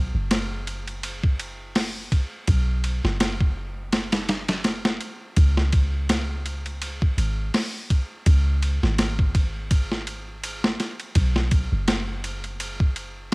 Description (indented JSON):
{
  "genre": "trip hop",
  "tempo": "83 BPM",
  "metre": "4/4",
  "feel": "swing 56% on 16ths",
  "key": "unclear",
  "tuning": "A4 = 440 Hz",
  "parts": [
    { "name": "soft 808-style bass", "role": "bass", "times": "0.0-13.3 s", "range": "F#1 to C#2", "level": "-25 LUFS", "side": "equal", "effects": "tube saturation" },
    { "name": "boom bap sampler-style drum kit", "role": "drums", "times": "0.3-13.3 s", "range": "hi-hat, kick drum, ride cymbal, snare drum", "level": "-23 LUFS", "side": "equal", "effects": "none" }
  ],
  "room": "digital ambience",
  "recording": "home recording on cassette",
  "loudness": "-21 LUFS",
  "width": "side -28 dB against mid",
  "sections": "0.0-13.3 A section",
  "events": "kick drops out 3.9-5.4",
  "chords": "none"
}